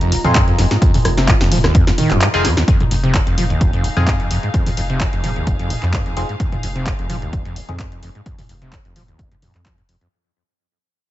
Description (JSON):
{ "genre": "acid house", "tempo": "129 BPM", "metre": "4/4", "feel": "swing 54% on 16ths", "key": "F minor pentatonic", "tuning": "A4 = 440 Hz", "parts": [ { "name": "dark analog pad", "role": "sustained chords", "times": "0.0-2.7 s", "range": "F4 to Bb5", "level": "-28 LUFS", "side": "right 4 dB", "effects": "chorus, sidechain pumping" }, { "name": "overdriven acid bass", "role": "riff", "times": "0.0-10.1 s", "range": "F1 to F3", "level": "-19 LUFS", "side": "equal", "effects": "distortion, tube saturation, wide subtle chorus, cassette tape, sidechain pumping, ping-pong delay" }, { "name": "round analog bass", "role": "bass", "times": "0.0-10.0 s", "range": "Eb1 to F2", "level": "-22 LUFS", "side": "equal", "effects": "tube saturation, sidechain pumping" }, { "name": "punchy analog drum machine", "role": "drums", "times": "0.0-10.1 s", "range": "handclaps, hi-hat, rim click, snare drum, toms", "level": "-21 LUFS", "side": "equal", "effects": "none" }, { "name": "band-passed chord stab", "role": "stabs", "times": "0.2-9.9 s", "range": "C4 to Ab4", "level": "-25 LUFS", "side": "left 2 dB", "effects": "phaser, lush chorus, vintage 12-bit sampler grit, ping-pong delay" }, { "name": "electronic kick drum", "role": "drums", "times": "0.4-9.8 s", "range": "none", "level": "-17 LUFS", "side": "equal", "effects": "none" }, { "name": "warm studio string section", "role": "texture", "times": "2.7-10.1 s", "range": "Eb4 to F5", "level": "-32 LUFS", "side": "left 1 dB", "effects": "sidechain pumping" } ], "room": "little or no reverb", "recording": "nothing above 7.9 kHz", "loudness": "-14 LUFS", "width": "side -14 dB against mid", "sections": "0.0-2.7 A section; 2.7-10.1 B section", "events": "drop 0.0-2.7; fade-out on string section 2.7-10.1; fade-out 2.7-10.1", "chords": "0.0 Fm7" }